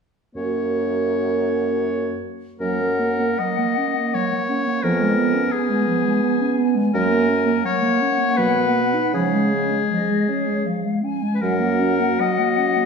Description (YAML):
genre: classical, slow romantic movement for wind quintet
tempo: 73-88 BPM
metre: 3/4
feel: rubato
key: F# major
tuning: A4 = 440 Hz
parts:
  - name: clear oboe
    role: second line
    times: 0.4-12.9 s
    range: G#4 to D#5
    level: -24 LUFS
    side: left 5 dB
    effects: none
  - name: mellow clarinet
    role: accompaniment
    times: 0.4-12.9 s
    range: E#3 to F#4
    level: -23 LUFS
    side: right 3 dB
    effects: none
  - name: warm French horn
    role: accompaniment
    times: 0.4-12.9 s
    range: F#3 to B3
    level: -25 LUFS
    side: right 1 dB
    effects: none
  - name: clear bassoon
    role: bass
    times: 0.4-12.1 s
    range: E#2 to C#3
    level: -23 LUFS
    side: right 1 dB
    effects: none
  - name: concert flute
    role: melody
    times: 2.6-12.9 s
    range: C#5 to G#5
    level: -27 LUFS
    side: left 6 dB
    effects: none
room: wet recital hall reverb, RT60 1.3 s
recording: heard from further back in the room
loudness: -18 LUFS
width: side -5 dB against mid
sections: 0.4-2.6 A section; 2.6-12.9 B section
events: none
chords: 0.4 F#; 4.8 C#7/E#; 6.9 F#; 8.4 Bmaj7; 9.1 C#; 11.4 F#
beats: | 0.36 1.09 1.82 | 2.61 3.39 4.13 | 4.84 5.53 6.23 | 6.94 7.65 8.38 | 9.14 9.91 10.67 | 11.42 12.21